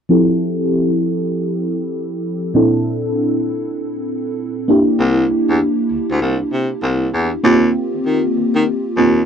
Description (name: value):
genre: R&B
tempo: 98 BPM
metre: 4/4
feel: swing 63% on 16ths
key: F major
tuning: A4 = 440 Hz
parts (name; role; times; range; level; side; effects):
- FM electric piano with soft pad layer; accompaniment; 0.1-9.3 s; Bb2 to A4; -15 LUFS; equal; chorus, low-pass filter
- warm baritone saxophone; bass; 5.0-9.2 s; C2 to Eb3; -17 LUFS; left 1 dB; none
room: light reverb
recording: dry, close 1970s-style studio recording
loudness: -15 LUFS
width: side -7 dB against mid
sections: 0.1-9.3 A section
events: filter sweep on FM electric piano 0.1-9.3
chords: 0.1 Fmaj7; 2.5 Bbmaj9#11; 4.7 C7; 7.4 Eb69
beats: | 0.10 0.71 1.32 1.93 | 2.54 3.16 3.77 4.38 | 4.99 5.61 6.22 6.83 | 7.44 8.05 8.67